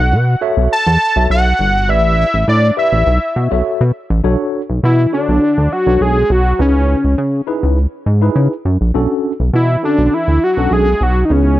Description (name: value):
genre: early-eighties boogie funk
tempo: 102 BPM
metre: 4/4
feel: straight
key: B minor, B dorian from 4.2 s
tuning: A4 = 440 Hz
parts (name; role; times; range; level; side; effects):
- fat analog lead; melody; 0.0-11.6 s; C#4 to A5; -14 LUFS; equal; none
- chorused synth bass; bass; 0.0-11.6 s; G1 to C#3; -13 LUFS; equal; none
- mellow tine electric piano; accompaniment; 0.4-11.6 s; B3 to E5; -20 LUFS; left 1 dB; medium stereo tremolo
room: little or no reverb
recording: none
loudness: -12 LUFS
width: side -14 dB against mid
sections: 0.0-4.2 A section; 4.2-11.6 B section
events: none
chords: 0.0 B9sus4; 1.9 A9sus4; 3.1 B9sus4; 4.2 Bm9; 6.6 C#m9; 8.9 Bm9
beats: 0.12 0.71 1.30 | 1.89 2.48 3.06 3.65 | 4.24 4.83 5.42 6.01 | 6.59 7.18 7.77 8.36 | 8.95 9.54 10.12 10.71 | 11.30